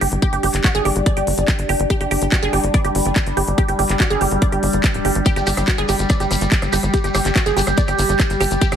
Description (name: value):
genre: psychedelic trance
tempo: 143 BPM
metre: 4/4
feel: straight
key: unclear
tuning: A4 = 440 Hz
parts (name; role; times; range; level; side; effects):
- overtone-sweeping drone; sustained chords; 0.0-8.8 s; G3 to G4; -22 LUFS; left 1 dB; chorus, built-in reverb, sidechain pumping
- wide unison pluck; riff; 0.0-8.8 s; F#4 to D5; -22 LUFS; right 3 dB; auto-pan, sidechain pumping, digital delay
- tight sequencer bass; bass; 0.0-8.8 s; D1 to Ab1; -21 LUFS; equal; none
- drum and bass drum kit; drums; 0.0-8.8 s; handclaps, hi-hat, rim click; -24 LUFS; equal; none
- electronic kick drum; drums; 0.2-8.7 s; none; -17 LUFS; equal; none
- shekere; percussion; 5.3-8.8 s; none; -29 LUFS; left 3 dB; none
room: light reverb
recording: heavily compressed radio sound, multiband compression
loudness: -15 LUFS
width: side -8 dB against mid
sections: 0.0-8.8 A section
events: none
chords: 0.0 G5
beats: | 0.22 0.64 1.06 1.48 | 1.90 2.32 2.74 3.16 | 3.58 4.00 4.42 4.84 | 5.26 5.68 6.10 6.52 | 6.94 7.36 7.78 8.20 | 8.62